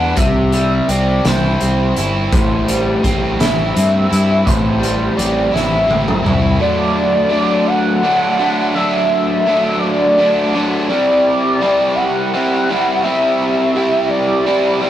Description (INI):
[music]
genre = indie rock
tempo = 56 BPM (dotted quarters)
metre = 6/8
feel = straight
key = unclear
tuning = A4 = 439 Hz
[part]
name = overdriven synth lead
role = melody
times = 0.0-14.9 s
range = C5 to F#5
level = -17 LUFS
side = equal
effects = distortion, phaser
[part]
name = overdriven electric guitar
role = riff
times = 0.0-14.9 s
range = A2 to E4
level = -16 LUFS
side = equal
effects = none
[part]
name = growling fingered electric bass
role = bass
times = 0.0-6.6 s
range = G1 to G2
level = -18 LUFS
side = equal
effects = overdrive
[part]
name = loose indie drum kit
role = drums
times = 0.2-6.4 s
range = hi-hat, kick drum, snare drum, toms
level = -19 LUFS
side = equal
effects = none
[sound]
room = moderate studio reverb, RT60 0.6 s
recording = rough rehearsal-room recording, tube saturation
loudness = -12 LUFS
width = side -11 dB against mid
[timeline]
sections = 0.0-6.6 A section; 6.6-14.9 B section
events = drum fill 5.5-6.6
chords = 0.2 C; 2.3 Am7; 6.6 D; 10.9 Cadd9